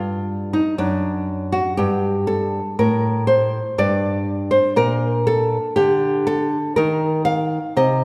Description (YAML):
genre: classical, baroque-style dance for nylon-string guitar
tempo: 60 BPM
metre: 3/4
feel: rubato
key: G minor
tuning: A4 = 443 Hz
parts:
  - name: nylon-string guitar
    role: solo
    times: 0.0-8.0 s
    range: F#2 to F5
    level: -20 LUFS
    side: equal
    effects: none
room: wet scoring stage reverb, RT60 2.0 s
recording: recorded in a church or concert hall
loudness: -20 LUFS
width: mono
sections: 0.0-8.0 A section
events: none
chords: 0.0 F7sus2/G; 0.8 Dadd11/F#; 3.8 Gm; 6.8 Adim (rootless)